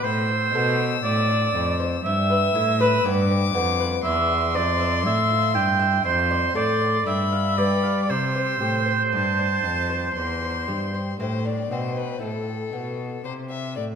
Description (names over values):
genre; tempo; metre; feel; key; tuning
classical, baroque-style sonata movement with continuo; 59 BPM; 4/4; straight; C major from 4.0 s; A4 = 440 Hz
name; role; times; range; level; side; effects
rich violin; melody; 0.0-13.8 s; A4 to E6; -30 LUFS; left 9 dB; none
clear oboe; second line; 0.0-11.2 s; B4 to G5; -23 LUFS; right 3 dB; none
lute; accompaniment; 0.0-14.0 s; E2 to F5; -29 LUFS; left 2 dB; none
rich cello; bass; 0.0-14.0 s; E2 to G3; -25 LUFS; equal; none
room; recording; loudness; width
wet concert hall reverb, RT60 1.7 s; none; -20 LUFS; side -7 dB against mid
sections
0.0-12.2 A section; 12.2-14.0 A section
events
none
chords
0.0 Am; 2.1 Em/G; 4.0 C/E; 6.0 Dm7/F; 7.1 G7; 8.1 C; 12.2 Am